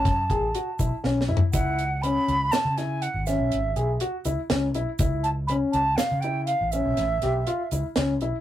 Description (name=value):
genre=progressive instrumental, band music in an uneven meter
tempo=121 BPM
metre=7/4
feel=straight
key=C# minor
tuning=A4 = 440 Hz
part: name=mellow silver concert flute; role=melody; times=0.0-7.7 s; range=E5 to B5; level=-26 LUFS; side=right 2 dB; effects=none
part: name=dark baby grand piano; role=arpeggios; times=0.0-8.3 s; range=C#4 to G#4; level=-28 LUFS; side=left 3 dB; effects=none
part: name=fretless electric bass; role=bass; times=0.0-8.3 s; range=G#1 to C#3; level=-28 LUFS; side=equal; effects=none
part: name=deep reggae drum kit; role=drums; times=0.1-8.3 s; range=hi-hat, kick drum, snare drum, toms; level=-26 LUFS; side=equal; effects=none
part: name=egg shaker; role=percussion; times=0.8-8.0 s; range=none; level=-40 LUFS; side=right 6 dB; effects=none
room=wet booth ambience, RT60 0.2 s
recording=rough rehearsal-room recording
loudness=-22 LUFS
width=side -12 dB against mid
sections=0.0-8.4 A section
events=drum fill 1.0-1.5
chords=0.0 B9sus4; 1.5 C#m7; 5.0 C#m7b13